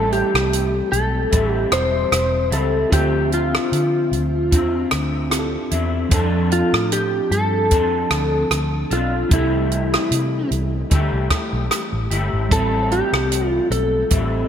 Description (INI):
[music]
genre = indie pop, bedroom pop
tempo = 75 BPM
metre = 4/4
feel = swing 55% on 16ths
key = A minor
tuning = A4 = 440 Hz
[part]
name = electric slide guitar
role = melody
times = 0.0-14.5 s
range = E4 to C5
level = -21 LUFS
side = equal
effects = analog chorus, ping-pong delay
[part]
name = electric guitar through a small old amp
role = accompaniment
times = 0.0-14.5 s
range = A2 to A4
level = -25 LUFS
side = left 4 dB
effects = ensemble chorus, warbly pitch drift
[part]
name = tine electric piano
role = accompaniment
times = 0.0-14.5 s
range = F3 to E5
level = -29 LUFS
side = right 5 dB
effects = cassette tape
[part]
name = vintage muted fingered electric bass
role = bass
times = 0.0-14.4 s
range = E1 to D3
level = -22 LUFS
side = equal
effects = none
[part]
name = compact cocktail drum kit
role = drums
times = 0.1-14.3 s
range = hi-hat, kick drum, rim click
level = -21 LUFS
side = equal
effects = gated reverb
[sound]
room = moderate plate reverb, RT60 3.8 s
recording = bright 1980s-style digital production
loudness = -17 LUFS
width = side -8 dB against mid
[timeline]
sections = 0.0-14.5 A section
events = none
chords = 0.0 Am7; 2.9 Dm9; 6.1 F6; 9.3 C6; 12.5 Am7